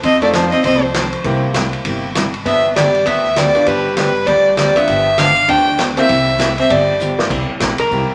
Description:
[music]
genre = country, western swing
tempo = 198 BPM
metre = 4/4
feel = swing 60% on 8ths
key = C major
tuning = A4 = 440 Hz
[part]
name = dark fiddle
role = melody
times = 0.0-7.2 s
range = B4 to G5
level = -17 LUFS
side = equal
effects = none
[part]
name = archtop guitar, miked and amplified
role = second line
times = 0.0-8.1 s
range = F3 to Bb4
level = -22 LUFS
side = equal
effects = none
[part]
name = picked steel-string acoustic guitar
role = accompaniment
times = 0.0-8.1 s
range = C3 to A4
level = -24 LUFS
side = equal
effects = none
[part]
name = upright bass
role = bass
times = 0.0-8.1 s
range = G1 to F2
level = -28 LUFS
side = equal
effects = none
[part]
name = vintage drum kit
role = drums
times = 0.0-7.8 s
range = crash cymbal, hi-hat, kick drum, ride cymbal, snare drum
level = -24 LUFS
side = equal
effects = none
[part]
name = bright upright piano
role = accompaniment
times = 0.2-7.3 s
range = Bb3 to A4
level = -26 LUFS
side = equal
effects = none
[sound]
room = wet club reverb, RT60 0.8 s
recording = none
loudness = -15 LUFS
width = mono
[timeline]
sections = 0.0-7.3 A section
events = drum fill 7.0-7.3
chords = 0.0 F7; 1.2 C7; 2.5 G7; 6.1 C7; 6.7 G7; 7.3 C7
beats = | 0.03 0.34 0.64 0.94 | 1.24 1.55 1.85 2.15 | 2.46 2.76 3.06 3.36 | 3.67 3.97 4.27 4.58 | 4.88 5.18 5.49 5.79 | 6.09 6.39 6.70 7.00 | 7.30 7.61 7.91

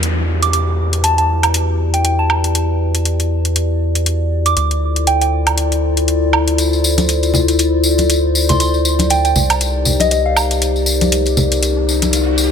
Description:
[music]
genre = deep house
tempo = 119 BPM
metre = 4/4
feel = swing 57% on 16ths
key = E phrygian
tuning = A4 = 441 Hz
[part]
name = warbly tape-like pad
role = sustained chords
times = 0.0-12.5 s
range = Eb4 to D5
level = -19 LUFS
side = left 4 dB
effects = chorus, built-in reverb
[part]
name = round analog bass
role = bass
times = 0.0-12.5 s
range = C2 to E2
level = -17 LUFS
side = equal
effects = none
[part]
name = electronic hi-hat and woodblock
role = drums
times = 0.0-12.2 s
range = none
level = -18 LUFS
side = right 1 dB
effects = overdrive
[part]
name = downlifter and riser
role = sound effects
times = 0.0-2.5, 11.2-12.5 s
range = none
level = -28 LUFS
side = left 1 dB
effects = none
[part]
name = soft synth bell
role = melody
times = 0.4-5.3, 8.5-10.6 s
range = Eb5 to D6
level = -20 LUFS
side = right 1 dB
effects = chorus, phaser, dub echo
[part]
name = tambourine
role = percussion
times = 6.6-12.5 s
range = none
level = -21 LUFS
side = left 3 dB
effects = none
[part]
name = congas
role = percussion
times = 7.0-12.1 s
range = none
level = -20 LUFS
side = equal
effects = none
[sound]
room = light reverb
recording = none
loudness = -13 LUFS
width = side -7 dB against mid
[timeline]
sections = 0.0-12.5 A section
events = riser 11.2-12.5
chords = 0.0 Em9; 4.6 Dm9; 9.4 Cm9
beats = 0.03 | 0.53 1.04 1.54 2.05 | 2.55 3.05 3.56 4.06 | 4.57 5.07 5.58 6.08 | 6.58 7.09 7.59 8.10 | 8.60 9.11 9.61 10.11 | 10.62 11.12 11.63 12.13

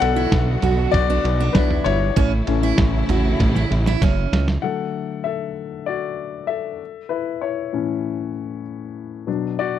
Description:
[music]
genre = piano-driven pop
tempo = 97 BPM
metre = 4/4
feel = straight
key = D major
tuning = A4 = 442 Hz
[part]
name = warm baby grand piano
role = accompaniment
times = 0.0-9.8 s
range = A2 to F#5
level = -24 LUFS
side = left 10 dB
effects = none
[part]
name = warm studio string section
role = sustained chords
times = 0.0-4.6 s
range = C#3 to F#4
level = -27 LUFS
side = right 2 dB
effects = none
[part]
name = fat analog bass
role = bass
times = 0.0-4.6 s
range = F#1 to C#2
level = -20 LUFS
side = right 1 dB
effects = none
[part]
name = lo-fi sampler-style drum kit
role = drums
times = 0.0-4.6 s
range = kick drum, ride cymbal, snare drum, toms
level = -21 LUFS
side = right 1 dB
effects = none
[part]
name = picked steel-string acoustic guitar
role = riff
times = 0.2-4.5 s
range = C#4 to F#4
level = -26 LUFS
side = right 12 dB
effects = none
[sound]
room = little or no reverb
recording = dry, close 1970s-style studio recording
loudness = -18 LUFS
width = side -10 dB against mid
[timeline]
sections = 0.0-4.6 A section; 4.6-9.8 B section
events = grand piano solo 0.0-4.6, 4.6-9.8; drum fill 3.4-4.6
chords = 0.0 Bm; 2.2 A; 4.6 D; 6.8 A; 9.3 Bm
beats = 0.32 0.94 1.55 | 2.17 2.79 3.40 4.02 | 4.64 5.26 5.88 6.49 | 7.11 7.73 8.35 8.97 | 9.59

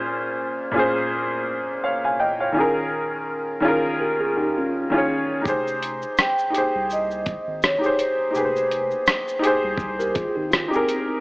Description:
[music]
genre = lo-fi hip hop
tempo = 83 BPM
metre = 4/4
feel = swing 56% on 16ths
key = unclear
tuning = A4 = 440 Hz
[part]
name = warm upright piano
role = accompaniment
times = 0.0-11.2 s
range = Bb2 to Ab5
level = -22 LUFS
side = equal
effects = cassette tape, low-pass filter
[part]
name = mellow tine electric piano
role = second line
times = 4.0-5.4, 10.0-11.2 s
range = C4 to Bb4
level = -26 LUFS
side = equal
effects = medium stereo tremolo, low-pass filter, tape echo
[part]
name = soft dub sub bass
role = bass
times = 5.5-10.7 s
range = F1 to C2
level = -37 LUFS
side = equal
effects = none
[part]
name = dusty soul sampler-style drum kit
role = drums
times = 5.5-11.1 s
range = hi-hat, kick drum, rim click, shaker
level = -22 LUFS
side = equal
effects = overdrive, vintage 12-bit sampler grit
[part]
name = vibraphone with soft mallets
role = melody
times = 6.2-9.4 s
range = C5 to G5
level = -23 LUFS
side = equal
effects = low-pass filter
[sound]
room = moderate plate reverb, RT60 2.6 s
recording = cassette tape, AM radio sound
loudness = -20 LUFS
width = side -26 dB against mid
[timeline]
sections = 0.0-11.2 A section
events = none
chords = 0.0 Bbm9; 2.6 Eb9sus4; 5.5 Fm9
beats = 0.39 1.11 1.84 | 2.56 3.28 4.01 4.73 | 5.45 6.18 6.90 7.62 | 8.34 9.07 9.79 10.51

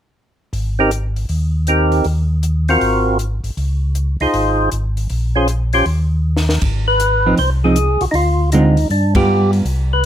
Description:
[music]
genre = soul jazz organ trio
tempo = 158 BPM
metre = 4/4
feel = swing 66% on 8ths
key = Ab major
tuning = A4 = 440 Hz
[part]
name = mellow tonewheel organ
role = bass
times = 0.5-10.1 s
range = Ab1 to G2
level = -17 LUFS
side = equal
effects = overdrive, chorus vibrato
[part]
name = compact cocktail drum kit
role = drums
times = 0.5-9.8 s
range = hi-hat, kick drum, ride cymbal, snare drum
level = -25 LUFS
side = left 1 dB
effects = none
[part]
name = percussive tonewheel organ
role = melody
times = 0.8-10.1 s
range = C4 to C5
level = -16 LUFS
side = equal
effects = slow rotary speaker, overdrive
[part]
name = hollow-body jazz guitar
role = accompaniment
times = 7.3-9.6 s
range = D3 to F4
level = -15 LUFS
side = right 2 dB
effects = none
[sound]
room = light reverb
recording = close, detailed microphones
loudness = -14 LUFS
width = side -10 dB against mid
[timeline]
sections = 0.5-6.6 A section; 6.6-10.1 B section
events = drum fill 6.2-6.6; band accent 9.1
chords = 0.5 Abmaj7; 2.1 Ebmadd9; 2.8 Ab13; 3.6 Dbmaj9; 5.1 Bbm7; 5.9 N.C.; 6.6 Ab6; 8.1 Dm7b5; 8.9 G7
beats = | 0.54 0.92 1.30 1.68 | 2.06 2.44 2.82 3.20 | 3.58 3.96 4.34 4.72 | 5.10 5.48 5.86 6.25 | 6.62 7.00 7.38 7.76 | 8.14 8.52 8.90 9.28 | 9.66 10.04

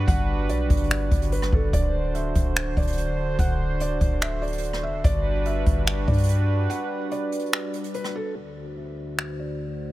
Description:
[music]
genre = hip hop, atmospheric cloud-rap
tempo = 145 BPM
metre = 4/4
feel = half-time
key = G major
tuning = A4 = 440 Hz
[part]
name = felt-muted upright piano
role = melody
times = 0.0-9.9 s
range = A4 to F#5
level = -32 LUFS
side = equal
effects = low-pass filter, tape echo
[part]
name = warm analog pad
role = sustained chords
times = 0.0-9.9 s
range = D2 to C5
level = -29 LUFS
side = right 2 dB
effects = chorus, sidechain pumping, low-pass filter
[part]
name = soft 808-style bass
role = bass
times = 0.0-6.7 s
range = D1 to G2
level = -25 LUFS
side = equal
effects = none
[part]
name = jazz brush drum kit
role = drums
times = 0.1-9.3 s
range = finger snaps, hi-hat, kick drum, rim click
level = -24 LUFS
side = equal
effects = none
[sound]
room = small room ambience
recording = none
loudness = -22 LUFS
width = side -16 dB against mid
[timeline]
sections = 0.0-8.4 A section; 8.4-9.9 B section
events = break 6.7-8.4; filter sweep 8.4-9.9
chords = 0.0 Gmaj7; 1.7 D7; 5.0 Gmaj7; 8.4 D7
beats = | 0.08 0.49 0.91 1.32 | 1.73 2.15 2.56 2.98 | 3.39 3.80 4.22 4.63 | 5.04 5.46 5.87 6.29 | 6.70 7.11 7.53 7.94 | 8.35 8.77 9.18 9.60

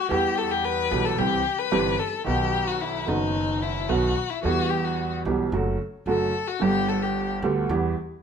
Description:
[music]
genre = tango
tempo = 110 BPM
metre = 4/4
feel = rubato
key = E minor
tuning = A4 = 440 Hz
[part]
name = warm violin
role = second line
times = 0.0-7.3 s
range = D#4 to B4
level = -26 LUFS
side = left 7 dB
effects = none
[part]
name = warm upright piano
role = accompaniment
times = 0.1-7.9 s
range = F#1 to F#5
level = -25 LUFS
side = right 4 dB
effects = none
[part]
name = upright bass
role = bass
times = 0.1-7.9 s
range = F#1 to E2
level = -32 LUFS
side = equal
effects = none
[sound]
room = moderate large studio reverb, RT60 1.0 s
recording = band playing live in one room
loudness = -22 LUFS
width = side -7 dB against mid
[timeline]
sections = 0.0-8.2 A section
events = violin solo 0.0-8.2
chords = 0.1 Em; 1.2 C; 2.3 B; 4.4 Em; 5.5 D/F#; 6.6 G; 7.7 Em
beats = | 0.10 0.64 1.18 1.72 | 2.26 2.81 3.35 3.90 | 4.44 4.99 5.53 6.08 | 6.62 7.16 7.70

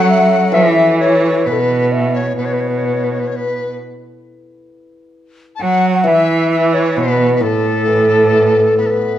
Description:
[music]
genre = chinese traditional, Chinese chamber ensemble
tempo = 66 BPM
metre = 4/4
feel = straight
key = A gong mode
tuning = A4 = 439 Hz
[part]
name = breathy low xiao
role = melody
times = 0.0-9.2 s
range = A4 to F#5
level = -17 LUFS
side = equal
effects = none
[part]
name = bright reedy large dizi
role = second line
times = 0.0-9.2 s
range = A4 to A5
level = -18 LUFS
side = left 4 dB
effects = none
[part]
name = rich cello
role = second line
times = 0.0-9.2 s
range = A2 to F#3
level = -16 LUFS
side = right 3 dB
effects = none
[part]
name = hammered dulcimer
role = accompaniment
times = 0.0-9.2 s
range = A2 to C#5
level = -19 LUFS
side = left 1 dB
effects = none
[sound]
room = wet recital hall reverb, RT60 1.2 s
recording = worn, warbling old tape, cassette tape, warbly pitch drift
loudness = -12 LUFS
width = side -11 dB against mid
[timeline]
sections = 0.0-9.2 A section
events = none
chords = none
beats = | 0.54 1.45 2.37 3.29 | 4.22 5.14 6.06 6.96 | 7.87 8.78

